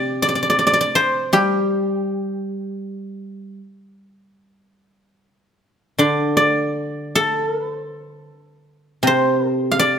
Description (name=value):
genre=chinese traditional, Chinese solo plucked strings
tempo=79 BPM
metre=4/4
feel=rubato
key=unclear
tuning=A4 = 440 Hz
part: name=guzheng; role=solo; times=0.0-10.0 s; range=C3 to F5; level=-17 LUFS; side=equal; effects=none
room=light reverb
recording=close, detailed microphones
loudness=-17 LUFS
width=side -7 dB against mid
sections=0.0-6.0 A section; 6.0-10.0 B section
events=none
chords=none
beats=0.60 1.34 2.08 | 2.83 3.59 4.36 5.17 | 5.98 6.75 7.52 8.28 | 9.03 9.77